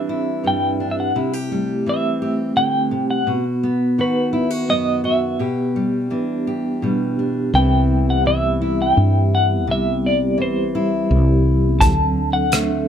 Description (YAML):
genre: folk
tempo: 84 BPM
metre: 3/4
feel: straight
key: unclear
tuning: A4 = 440 Hz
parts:
  - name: semi-hollow electric guitar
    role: melody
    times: 0.0-12.9 s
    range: B4 to A5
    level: -21 LUFS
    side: left 1 dB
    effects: tremolo
  - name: fingerpicked steel-string acoustic guitar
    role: accompaniment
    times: 0.0-12.9 s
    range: F#2 to G4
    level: -22 LUFS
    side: left 2 dB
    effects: none
  - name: vibraphone with soft mallets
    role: arpeggios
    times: 0.0-12.9 s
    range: F#3 to A4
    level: -22 LUFS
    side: right 2 dB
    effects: none
  - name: woody fretless electric bass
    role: bass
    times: 7.5-12.9 s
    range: C2 to G2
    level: -18 LUFS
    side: right 1 dB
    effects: none
  - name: loose indie drum kit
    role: drums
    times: 11.8-12.7 s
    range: hi-hat, kick drum, rim click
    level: -20 LUFS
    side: right 1 dB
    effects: none
room: light reverb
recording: none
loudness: -16 LUFS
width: side -8 dB against mid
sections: 0.0-7.5 A section; 7.5-12.9 B section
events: none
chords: 0.0 Cadd9; 1.1 Am7/C; 3.3 B; 5.4 Em7/B; 7.5 Cmaj7; 11.8 D7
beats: 0.43 | 1.14 1.85 2.56 | 3.27 3.98 4.69 | 5.40 6.11 6.83 | 7.54 8.25 8.96 | 9.68 10.39 11.10 | 11.81 12.52